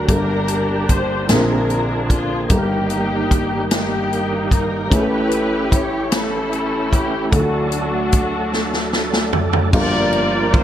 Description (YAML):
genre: slow gospel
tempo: 50 BPM (dotted quarters)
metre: 6/8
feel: straight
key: unclear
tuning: A4 = 439 Hz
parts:
  - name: muted studio string section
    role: melody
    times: 0.0-10.6 s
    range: A3 to D5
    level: -21 LUFS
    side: left 1 dB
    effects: none
  - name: warm grand piano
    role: accompaniment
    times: 0.0-10.6 s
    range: G1 to A5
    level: -22 LUFS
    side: equal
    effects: none
  - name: glass harmonica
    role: sustained chords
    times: 0.0-9.7 s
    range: A3 to D5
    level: -32 LUFS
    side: equal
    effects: none
  - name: overdriven tonewheel organ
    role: sustained chords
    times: 0.0-10.6 s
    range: G2 to A4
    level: -25 LUFS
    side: right 3 dB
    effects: chorus vibrato, fast rotary speaker
  - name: swinging big-band drum kit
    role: drums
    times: 0.1-10.6 s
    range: crash cymbal, hi-hat, kick drum, ride cymbal, snare drum, toms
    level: -18 LUFS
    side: equal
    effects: none
room: light reverb, small room ambience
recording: none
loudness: -16 LUFS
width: side -11 dB against mid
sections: 0.0-9.7 A section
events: drum fill 8.5-9.7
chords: 0.1 Gm; 1.3 Bb9; 2.5 Eb/G; 4.9 A7; 7.3 D; 9.7 Gm7